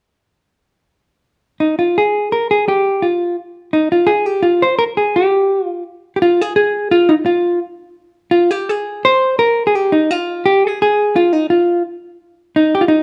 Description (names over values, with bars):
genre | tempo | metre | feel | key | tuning
musette | 170 BPM | 3/4 | straight | Ab major | A4 = 440 Hz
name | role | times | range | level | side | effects
hollow-body jazz guitar | solo | 1.6-13.0 s | Eb4 to C5 | -15 LUFS | equal | none
room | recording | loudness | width
moderate recital hall reverb, RT60 1.2 s | none | -15 LUFS | mono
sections
0.9-2.0 A section; 2.0-6.2 B section; 6.2-13.0 C section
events
none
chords
none